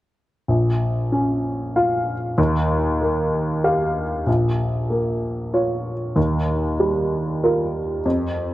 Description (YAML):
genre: classical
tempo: 95 BPM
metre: 3/4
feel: rubato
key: Bb dorian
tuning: A4 = 441 Hz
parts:
  - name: warm upright piano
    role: accompaniment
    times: 0.5-8.5 s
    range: Bb1 to F5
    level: -19 LUFS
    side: equal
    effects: none
room: moderate concert hall reverb, RT60 2.3 s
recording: worn, warbling old tape, cassette tape, warbly pitch drift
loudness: -19 LUFS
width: side -16 dB against mid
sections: 0.5-4.3 A section; 4.3-8.5 B section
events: none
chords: 0.5 Bbm; 2.4 Ebadd9; 4.3 Bbm; 6.2 Ebadd9